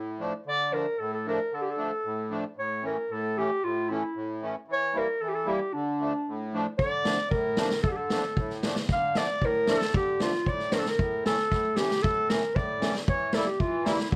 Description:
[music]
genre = klezmer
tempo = 114 BPM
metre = 2/4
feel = straight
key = D harmonic minor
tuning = A4 = 436 Hz
[part]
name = warm clarinet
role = melody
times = 0.0-14.2 s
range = D4 to F5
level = -30 LUFS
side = equal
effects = none
[part]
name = accordion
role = accompaniment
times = 0.0-14.2 s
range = A2 to E4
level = -35 LUFS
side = equal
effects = light tremolo tuning
[part]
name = street-band drum kit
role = drums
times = 6.8-14.2 s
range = kick drum, snare drum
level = -31 LUFS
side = equal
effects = none
[sound]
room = moderate small room reverb, RT60 0.5 s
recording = none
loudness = -28 LUFS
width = mono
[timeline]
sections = 0.0-6.8 A section; 6.8-14.2 A section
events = none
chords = 0.0 Dm; 2.6 A; 4.7 Edim; 5.7 Dm; 11.0 A; 13.1 Edim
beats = | 0.47 1.00 | 1.52 2.05 | 2.58 3.10 | 3.63 4.16 | 4.68 5.21 | 5.74 6.26 | 6.79 7.31 | 7.84 8.36 | 8.89 9.41 | 9.94 10.46 | 10.99 11.51 | 12.03 12.56 | 13.08 13.60 | 14.12

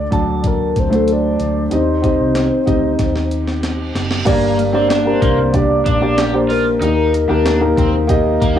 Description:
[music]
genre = piano-driven pop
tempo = 94 BPM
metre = 4/4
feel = straight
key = G harmonic minor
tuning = A4 = 442 Hz
[part]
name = mellow horn-like synth lead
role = melody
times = 0.0-8.4 s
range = A4 to D5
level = -21 LUFS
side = left 5 dB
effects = chorus, cassette tape, tape echo
[part]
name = warm upright piano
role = accompaniment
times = 0.0-8.6 s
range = G2 to A5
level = -16 LUFS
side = right 1 dB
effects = cassette tape
[part]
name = vintage muted fingered electric bass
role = bass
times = 0.0-8.6 s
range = F#1 to Eb2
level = -21 LUFS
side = left 1 dB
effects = none
[part]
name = breakbeat sampler-style drum kit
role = drums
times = 0.1-8.6 s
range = crash cymbal, hi-hat, kick drum, snare drum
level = -20 LUFS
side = left 1 dB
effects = cassette tape
[part]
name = reverse cymbal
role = sound effects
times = 3.5-4.3 s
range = none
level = -29 LUFS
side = right 5 dB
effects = none
[part]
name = raw garage guitar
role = riff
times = 4.3-8.6 s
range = Bb3 to G4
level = -23 LUFS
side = equal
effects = overdrive, phaser, cassette tape
[sound]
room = moderate small room reverb, RT60 0.5 s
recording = home recording on cassette, small room ambience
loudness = -13 LUFS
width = side -10 dB against mid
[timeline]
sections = 0.0-4.3 A section; 4.3-8.6 B section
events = drum fill 3.0-4.3; reverse cymbal 3.5-4.3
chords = 0.0 D; 1.7 Cm; 4.3 Gm; 6.8 Eb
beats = 0.44 1.07 | 1.71 2.35 2.99 3.63 | 4.26 4.90 5.54 6.18 | 6.82 7.46 8.09

